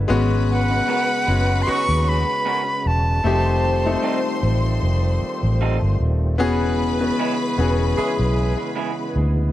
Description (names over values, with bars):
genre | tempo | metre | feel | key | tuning
soul | 76 BPM | 4/4 | swing 54% on 16ths | unclear | A4 = 440 Hz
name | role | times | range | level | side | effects
clear concert grand piano | accompaniment | 0.0-9.5 s | G3 to B4 | -24 LUFS | left 4 dB | none
percussive tonewheel organ | sustained chords | 0.0-9.5 s | C#3 to F#4 | -30 LUFS | right 2 dB | fast rotary speaker, overdrive
vintage muted fingered electric bass | bass | 0.0-9.5 s | Eb1 to D#2 | -20 LUFS | equal | none
bright studio string section | second line | 0.1-9.1 s | B4 to C6 | -28 LUFS | left 1 dB | none
bright reedy silver concert flute | melody | 0.5-4.4 s | F#5 to C#6 | -22 LUFS | right 1 dB | none
electric guitar through a small old amp | riff | 0.9-8.9 s | G3 to A#4 | -30 LUFS | right 7 dB | wide subtle chorus
clear horn section | stabs | 1.7-2.2, 8.0-8.5 s | F#3 to G#4 | -28 LUFS | right 1 dB | tape echo
room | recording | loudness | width
light reverb, studio reverb | none | -18 LUFS | side -14 dB against mid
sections
0.0-9.5 A section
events
none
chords
0.1 G#m11; 3.2 F9; 6.4 E6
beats
| 0.10 0.88 1.67 2.46 | 3.25 4.03 4.82 5.61 | 6.40 7.19 7.97 8.76